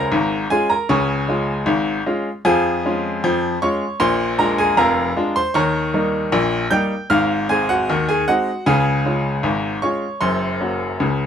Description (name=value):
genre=ragtime piano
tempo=77 BPM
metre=2/4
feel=straight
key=Db major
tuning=A4 = 439 Hz
part: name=bright upright piano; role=solo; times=0.0-11.3 s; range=F1 to G6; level=-16 LUFS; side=equal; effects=none
room=light reverb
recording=close, detailed microphones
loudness=-16 LUFS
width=side -8 dB against mid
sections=0.0-11.3 A section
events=none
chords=0.0 Db; 2.5 Db/F; 4.0 Bb7; 5.6 Eb7; 7.1 Ab7; 8.7 Db; 10.2 Gb